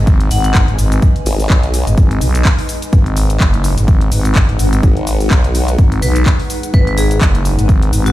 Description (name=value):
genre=bass house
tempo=126 BPM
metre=4/4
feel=swing 56% on 16ths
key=G# minor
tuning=A4 = 441 Hz
part: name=dark analog pad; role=sustained chords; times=0.0-8.1 s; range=G#3 to F#5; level=-30 LUFS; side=right 2 dB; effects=chorus, sidechain pumping
part: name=growling FM bass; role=bass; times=0.0-8.1 s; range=F#1 to B1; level=-14 LUFS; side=equal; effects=tube saturation, sidechain pumping
part: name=downlifter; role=sound effects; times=0.0-2.0 s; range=none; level=-38 LUFS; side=left 1 dB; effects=none
part: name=granular cloud pad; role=texture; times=0.0-8.1 s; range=D#4 to G#5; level=-24 LUFS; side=left 2 dB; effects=built-in reverb, sidechain pumping
part: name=electronic kick drum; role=drums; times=0.1-7.8 s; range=none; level=-11 LUFS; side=equal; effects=overdrive
part: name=house drum kit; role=drums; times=0.1-8.1 s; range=cabasa, handclaps, hi-hat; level=-22 LUFS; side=equal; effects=overdrive
part: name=vibraphone with hard mallets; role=melody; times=0.3-0.5, 6.0-8.1 s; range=F#4 to F#5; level=-23 LUFS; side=left 3 dB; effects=ping-pong delay
part: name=formant-sweep wobble bass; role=bass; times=1.3-1.9, 4.8-5.8 s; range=G#1 to B1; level=-15 LUFS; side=equal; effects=chorus, tube saturation, sidechain pumping
room=little or no reverb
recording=played on a big sound system in a bare room, large studio reverb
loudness=-10 LUFS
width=side -15 dB against mid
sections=0.0-8.1 A section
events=none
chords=0.0 G#m